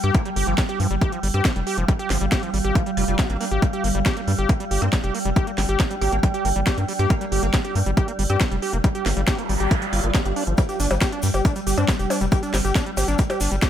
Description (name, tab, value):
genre	psychedelic trance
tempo	138 BPM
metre	4/4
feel	straight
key	G minor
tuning	A4 = 436 Hz
part	metallic wobble bass	second line	0.0-13.2 s	Bb3 to F4	-37 LUFS	right 3 dB	analog chorus, sidechain pumping, high-pass filter, digital delay
part	swarming drone	sustained chords	0.0-13.7 s	G3	-29 LUFS	right 2 dB	built-in reverb, sidechain pumping
part	overdriven acid bass	riff	0.0-13.7 s	F3 to G4	-27 LUFS	equal	auto-pan, sidechain pumping, digital delay
part	round analog bass	bass	0.0-13.6 s	F1 to G2	-23 LUFS	equal	tube saturation
part	techno drum kit	drums	0.0-13.7 s	hi-hat, percussion blips, snare drum	-28 LUFS	equal	none
part	deep dark ambient pad	texture	0.0-13.7 s	G4 to G5	-32 LUFS	right 1 dB	chorus, built-in reverb, sidechain pumping
part	electronic kick drum	drums	0.1-13.7 s	none	-20 LUFS	equal	none
part	noise sweep	sound effects	9.1-10.6 s	none	-32 LUFS	right 4 dB	none
part	maracas	percussion	10.6-13.7 s	none	-34 LUFS	left 4 dB	none
room	digital ambience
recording	none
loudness	-19 LUFS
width	side -10 dB against mid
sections	0.0-13.7 A section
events	noise sweep 9.1-10.6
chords	0.0 G5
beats	| 0.15 0.58 1.01 1.45 | 1.89 2.32 2.75 3.19 | 3.62 4.06 4.49 4.93 | 5.36 5.80 6.23 6.67 | 7.10 7.54 7.97 8.41 | 8.84 9.28 9.71 10.15 | 10.58 11.02 11.45 11.88 | 12.32 12.75 13.19 13.62